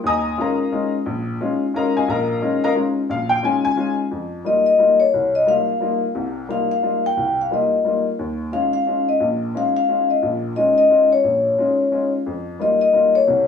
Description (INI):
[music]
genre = jazz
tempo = 177 BPM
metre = 3/4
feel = swing 62% on 8ths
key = F minor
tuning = A4 = 440 Hz
[part]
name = warm upright piano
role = accompaniment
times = 0.0-13.5 s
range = Bb1 to Eb6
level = -21 LUFS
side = left 3 dB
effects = none
[part]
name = vibraphone with soft mallets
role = melody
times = 4.5-13.5 s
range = Db5 to G5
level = -16 LUFS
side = left 3 dB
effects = plate reverb
[sound]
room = wet studio reverb, RT60 0.8 s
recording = heard from further back in the room, small room reverb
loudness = -17 LUFS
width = side -7 dB against mid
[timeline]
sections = 0.0-4.1 A section; 4.1-13.5 B section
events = none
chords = 0.0 Eb9sus4; 4.1 F9sus4; 8.2 Eb9sus4; 12.3 F9sus4